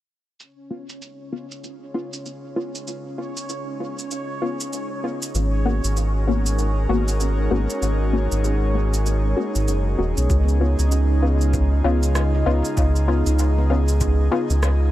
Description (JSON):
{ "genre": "ambient dub", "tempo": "97 BPM", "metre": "4/4", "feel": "swing 60% on 16ths", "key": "unclear", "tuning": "A4 = 440 Hz", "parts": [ { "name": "airy breathy pad", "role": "sustained chords", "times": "0.4-14.9 s", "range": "C#3 to C#5", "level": "-28 LUFS", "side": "equal", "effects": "chorus" }, { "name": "electronic shaker and rim click", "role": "drums", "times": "0.4-14.8 s", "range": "none", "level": "-30 LUFS", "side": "right 2 dB", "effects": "low-pass filter on perc, low-pass filter on snare, low-pass filter on room" }, { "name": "bubbling stepped-filter texture", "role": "texture", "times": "0.4-14.9 s", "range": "C#4 to D#5", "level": "-32 LUFS", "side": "equal", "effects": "chorus, built-in reverb" }, { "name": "filtered dub chord stab", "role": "stabs", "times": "0.7-14.5 s", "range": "A#3 to F#4", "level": "-27 LUFS", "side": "left 3 dB", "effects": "chorus, dub echo" }, { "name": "round analog bass", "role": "bass", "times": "5.3-14.9 s", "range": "D#1 to C#2", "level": "-19 LUFS", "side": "equal", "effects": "none" }, { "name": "electronic kick drum", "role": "drums", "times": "10.3-14.2 s", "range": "none", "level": "-24 LUFS", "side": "equal", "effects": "none" }, { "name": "handpan", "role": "arpeggios", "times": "10.4-14.9 s", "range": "B3 to G#4", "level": "-30 LUFS", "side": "right 1 dB", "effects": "dub echo" } ], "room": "little or no reverb", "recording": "none", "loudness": "-19 LUFS", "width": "side -14 dB against mid", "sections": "0.4-10.3 A section; 10.3-14.9 B section", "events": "fade-in on analog synth pad 0.4-10.3", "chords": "0.4 C#7; 5.3 G#m11; 10.3 C#7", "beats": "| 0.40 1.02 1.64 2.26 | 2.88 3.50 4.11 4.73 | 5.35 5.97 6.59 7.21 | 7.83 8.44 9.06 9.68 | 10.30 10.92 11.54 12.15 | 12.77 13.39 14.01 14.63" }